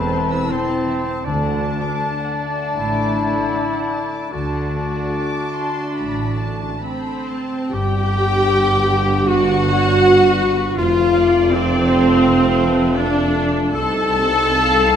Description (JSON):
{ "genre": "cinematic, emotional film score for orchestra", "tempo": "64-82 BPM", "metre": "4/4", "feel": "rubato", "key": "unclear", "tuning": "A4 = 436 Hz", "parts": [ { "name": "muted studio violin section", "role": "melody", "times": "0.0-15.0 s", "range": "A4 to A5", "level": "-33 LUFS", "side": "left 3 dB", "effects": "none" }, { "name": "warm duduk", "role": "melody", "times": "0.0-6.8 s", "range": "C4 to B4", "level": "-26 LUFS", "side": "left 1 dB", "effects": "none" }, { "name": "clear clarinet", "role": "second line", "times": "0.0-15.0 s", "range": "C4 to D5", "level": "-23 LUFS", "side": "equal", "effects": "none" }, { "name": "mellow flute section", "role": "second line", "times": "0.0-7.3 s", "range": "A5", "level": "-28 LUFS", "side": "left 3 dB", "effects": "none" }, { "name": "muted studio violin section", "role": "second line", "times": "0.0-15.0 s", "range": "C5 to E6", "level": "-28 LUFS", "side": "left 3 dB", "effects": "none" }, { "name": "muted studio viola section", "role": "accompaniment", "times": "0.0-15.0 s", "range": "C4 to A4", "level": "-19 LUFS", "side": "right 1 dB", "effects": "none" }, { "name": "mellow French horn section", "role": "sustained chords", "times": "0.0-15.0 s", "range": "G3 to F4", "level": "-26 LUFS", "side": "left 4 dB", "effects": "none" }, { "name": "concert harp", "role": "arpeggios", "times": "0.0-15.0 s", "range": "F2 to A5", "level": "-28 LUFS", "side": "left 5 dB", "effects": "none" }, { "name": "muted studio cello section", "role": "bass", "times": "0.0-15.0 s", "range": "E2 to D3", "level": "-26 LUFS", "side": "right 3 dB", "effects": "none" }, { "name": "muted studio double bass section", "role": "bass", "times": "0.0-15.0 s", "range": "E1 to D2", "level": "-24 LUFS", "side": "right 2 dB", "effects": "none" } ], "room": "wet scoring stage reverb, RT60 1.5 s", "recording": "none", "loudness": "-15 LUFS", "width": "side -8 dB against mid", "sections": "0.0-7.7 A section; 7.7-15.0 B section", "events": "none", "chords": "0.0 Am; 1.3 D; 7.7 G; 10.8 F; 13.7 Cm7" }